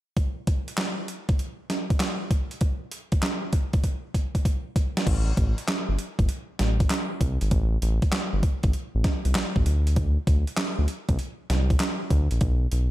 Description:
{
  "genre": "R&B, new jack swing",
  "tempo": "98 BPM",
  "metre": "4/4",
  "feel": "swing 67% on 16ths",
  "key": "unclear",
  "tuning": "A4 = 441 Hz",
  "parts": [
    { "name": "crisp 8-bit digital drum machine", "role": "drums", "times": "0.2-12.9 s", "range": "crash cymbal, handclaps, hi-hat, kick drum, snare drum", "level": "-24 LUFS", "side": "equal", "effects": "overdrive" },
    { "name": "round analog bass", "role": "bass", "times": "5.1-12.9 s", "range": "G1 to D2", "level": "-23 LUFS", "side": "equal", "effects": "none" }
  ],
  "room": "little or no reverb",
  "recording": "none",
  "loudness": "-23 LUFS",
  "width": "side -16 dB against mid",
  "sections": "0.2-5.1 A section; 5.1-12.9 B section",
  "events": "drum fill 3.8-5.1",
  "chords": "none"
}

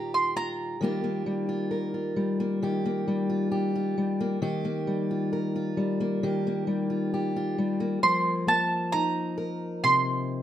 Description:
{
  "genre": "folk",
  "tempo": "66 BPM",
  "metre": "4/4",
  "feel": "straight",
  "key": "unclear",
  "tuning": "A4 = 440 Hz",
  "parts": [
    { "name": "mandolin", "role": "melody", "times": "0.0-0.8, 8.0-10.4 s", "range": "A5 to C6", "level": "-24 LUFS", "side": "right 2 dB", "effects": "plate reverb" },
    { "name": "fingerpicked steel-string acoustic guitar", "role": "accompaniment", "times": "0.0-10.4 s", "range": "Bb2 to Bb4", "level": "-27 LUFS", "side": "left 1 dB", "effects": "none" }
  ],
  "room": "light reverb",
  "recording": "close, detailed microphones",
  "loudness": "-25 LUFS",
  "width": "side -11 dB against mid",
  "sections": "0.8-8.0 A section; 8.0-10.4 B section",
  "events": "none",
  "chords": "0.0 Ebadd9; 8.0 F7sus4"
}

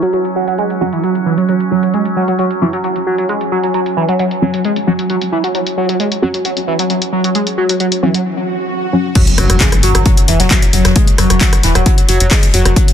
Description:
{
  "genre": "driving peak-time techno",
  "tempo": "133 BPM",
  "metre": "4/4",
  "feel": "straight",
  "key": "unclear",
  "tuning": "A4 = 440 Hz",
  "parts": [
    { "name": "overdriven synth lead", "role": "riff", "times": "0.0-12.8 s", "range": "E3 to G#3", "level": "-15 LUFS", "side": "right 1 dB", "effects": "phaser, tube saturation, cassette tape, sidechain pumping, digital delay" },
    { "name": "overtone-sweeping drone", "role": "drone", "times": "0.0-8.3 s", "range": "F#3 to C#4", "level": "-22 LUFS", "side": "right 3 dB", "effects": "chorus, built-in reverb, sidechain pumping" },
    { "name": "punchy analog drum machine", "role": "drums", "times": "0.0-12.9 s", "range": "crash cymbal, handclaps, hi-hat, rim click", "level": "-18 LUFS", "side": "left 1 dB", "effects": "sidechain pumping on hats, low-pass filter on hats, sidechain pumping on cymbals, low-pass filter on cymbals, low-pass filter on snare, low-pass filter on room" },
    { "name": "filtered dub chord stab", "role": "stabs", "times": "0.8-9.1 s", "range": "F#3 to F#4", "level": "-21 LUFS", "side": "left 1 dB", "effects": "wide subtle chorus, sidechain pumping, ping-pong delay" },
    { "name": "swell and impact", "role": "sound effects", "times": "8.4-11.0 s", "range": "none", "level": "-21 LUFS", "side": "equal", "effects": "none" },
    { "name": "electronic kick drum", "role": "drums", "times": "9.2-12.9 s", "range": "none", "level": "-11 LUFS", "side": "equal", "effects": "overdrive" },
    { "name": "jazz brush drum kit", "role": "drums", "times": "9.2-12.9 s", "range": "hi-hat, snare drum", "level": "-25 LUFS", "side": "left 3 dB", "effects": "none" },
    { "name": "tight sequencer bass", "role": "bass", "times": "9.4-12.7 s", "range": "E1 to G#1", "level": "-13 LUFS", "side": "equal", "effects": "sidechain pumping" }
  ],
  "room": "light reverb",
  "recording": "dense, heavily limited modern master, low-pass filter",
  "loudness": "-11 LUFS",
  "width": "side -9 dB against mid",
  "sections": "0.0-9.2 A section; 9.2-12.9 B section",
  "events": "filter sweep on analog synth lead 0.0-9.2; filter sweep on synth stab 0.0-9.2; filter sweep 0.0-9.2; break 8.3-9.2; swell 8.4-9.2; drop 9.2-12.9; impact 9.2-11.0",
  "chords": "0.0 F#5"
}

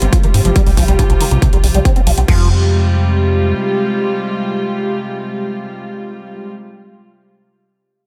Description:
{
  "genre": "uplifting trance",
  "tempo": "139 BPM",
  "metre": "4/4",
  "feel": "straight",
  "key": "F minor",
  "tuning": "A4 = 439 Hz",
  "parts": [
    { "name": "dark studio string section", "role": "sustained chords", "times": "0.0-6.5 s", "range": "C3 to G4", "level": "-21 LUFS", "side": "equal", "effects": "sidechain pumping" },
    { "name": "liquid acid bass", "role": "arpeggios", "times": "0.0-2.5 s", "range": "C2 to C4", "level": "-22 LUFS", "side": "equal", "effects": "phaser, ensemble chorus, sidechain pumping, digital delay" },
    { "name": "tight sequencer bass", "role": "bass", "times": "0.0-3.5 s", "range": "Ab1 to Ab2", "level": "-16 LUFS", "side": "equal", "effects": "sidechain pumping" },
    { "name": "big-room dance drum kit", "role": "drums", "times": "0.0-2.4 s", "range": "crash cymbal, hi-hat", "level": "-27 LUFS", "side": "equal", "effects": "sidechain pumping on hats, sidechain pumping on cymbals" },
    { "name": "electronic kick drum", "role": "drums", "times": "0.1-2.4 s", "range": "none", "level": "-15 LUFS", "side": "equal", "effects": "none" }
  ],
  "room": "light reverb",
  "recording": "none",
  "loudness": "-14 LUFS",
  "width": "mono",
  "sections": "0.0-2.3 A section; 2.3-5.7 B section",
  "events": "filter sweep on analog synth bass 0.0-2.3; filter sweep on acid bass 0.0-2.3",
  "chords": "0.0 Fmadd9/Ab; 0.6 Csus4; 2.3 Fmadd9"
}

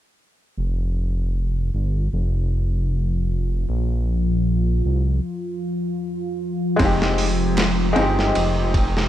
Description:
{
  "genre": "trip hop",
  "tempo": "77 BPM",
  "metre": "4/4",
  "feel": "swing 55% on 16ths",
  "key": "unclear",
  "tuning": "A4 = 442 Hz",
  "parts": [
    { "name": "deep dark ambient pad", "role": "sustained chords", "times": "2.0-9.1 s", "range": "F3 to F4", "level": "-26 LUFS", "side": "left 1 dB", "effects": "chorus, built-in reverb" },
    { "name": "dark detuned saw bass", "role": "bass", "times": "0.6-9.1 s", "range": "F1 to C2", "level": "-21 LUFS", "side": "equal", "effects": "none" },
    { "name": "felt-muted upright piano", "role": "accompaniment", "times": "6.8-9.1 s", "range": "Ab3 to G4", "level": "-21 LUFS", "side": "left 1 dB", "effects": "tremolo, vintage 12-bit sampler grit, tape echo" },
    { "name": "dusty soul sampler-style drum kit", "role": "drums", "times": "6.8-9.1 s", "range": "hi-hat, kick drum, ride cymbal, snare drum", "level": "-23 LUFS", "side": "equal", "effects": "overdrive, vintage 12-bit sampler grit" }
  ],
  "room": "little or no reverb",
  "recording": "none",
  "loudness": "-19 LUFS",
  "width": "side -12 dB against mid",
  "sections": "0.6-9.1 A section",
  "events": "none",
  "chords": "0.6 N.C.; 3.7 Bb5; 6.8 Fm9"
}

